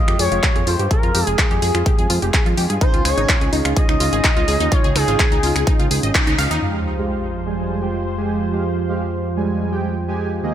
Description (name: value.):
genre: progressive house.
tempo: 126 BPM.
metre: 4/4.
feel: straight.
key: F minor.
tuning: A4 = 440 Hz.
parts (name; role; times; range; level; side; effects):
expressive portamento lead; melody; 0.0-5.9 s; Ab4 to Eb5; -23 LUFS; equal; analog chorus, dub echo.
lush unison pad; sustained chords; 0.0-10.5 s; Db3 to G5; -26 LUFS; right 2 dB; chorus, sidechain pumping.
wide unison pluck; arpeggios; 0.1-6.5 s; Eb4 to F5; -25 LUFS; right 1 dB; phaser, sidechain pumping, dub echo.
fat analog bass; bass; 0.1-10.5 s; F1 to G2; -23 LUFS; equal; sidechain pumping.
big-room dance drum kit; drums; 0.1-6.6 s; finger snaps, handclaps, hi-hat; -22 LUFS; equal; none.
electronic kick drum; drums; 0.4-6.2 s; none; -18 LUFS; equal; none.
soft supersaw; stabs; 6.6-10.5 s; Eb3 to Ab5; -23 LUFS; right 2 dB; sidechain pumping, low-pass filter, dub echo.
sub drop; sound effects; 6.6-8.5 s; none; -28 LUFS; equal; none.
room: light reverb.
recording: none.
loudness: -16 LUFS.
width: side -10 dB against mid.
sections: 0.0-6.6 A section; 6.6-10.5 B section.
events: filter sweep on synth pluck 0.0-6.6; band accent 6.1; impact 6.6-8.5; filter sweep on supersaw synth 6.6-10.5.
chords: 0.0 Fmadd9; 2.8 Dbadd9; 6.6 Fmadd9.